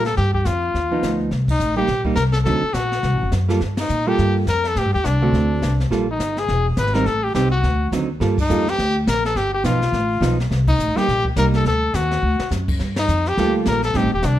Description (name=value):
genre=jazz, small-group swing and bop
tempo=209 BPM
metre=4/4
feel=swing 60% on 8ths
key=G minor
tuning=A4 = 438 Hz
part: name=brilliant trumpet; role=melody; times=0.0-14.4 s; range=D4 to B4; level=-21 LUFS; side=left 2 dB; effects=none
part: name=archtop guitar, miked and amplified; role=accompaniment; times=0.0-14.1 s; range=D3 to A4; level=-23 LUFS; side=right 3 dB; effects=none
part: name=upright bass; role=bass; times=0.0-14.4 s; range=Eb1 to Bb2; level=-20 LUFS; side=equal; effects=none
part: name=jazz brush drum kit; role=drums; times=0.0-14.4 s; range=brushed snare drum, crash cymbal, hi-hat, kick drum, ride cymbal, snare drum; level=-28 LUFS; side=equal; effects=none
room=light reverb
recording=dark, warm production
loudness=-17 LUFS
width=side -12 dB against mid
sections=0.0-8.2 A section; 8.2-14.4 A section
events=band accent 1.5, 3.8, 8.3, 10.6, 12.9; drum fill 12.2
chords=0.2 G7b13; 1.3 Cm7; 2.5 D7b9; 3.6 Gm9; 4.8 Am7b5; 5.3 D7; 5.9 Gm9; 6.5 E; 7.1 Am7b5; 7.6 D7b9; 8.2 Gm9; 9.4 G7b13; 10.5 Cm7; 11.6 D; 12.8 Gm9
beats=| 0.17 0.45 0.74 1.03 | 1.31 1.60 1.89 2.17 | 2.46 2.75 3.04 3.32 | 3.61 3.90 4.18 4.47 | 4.76 5.04 5.33 5.62 | 5.91 6.19 6.48 6.77 | 7.06 7.34 7.63 7.92 | 8.21 8.49 8.78 9.07 | 9.35 9.64 9.93 10.21 | 10.50 10.79 11.08 11.36 | 11.65 11.94 12.22 12.51 | 12.79 13.08 13.37 13.65 | 13.94 14.23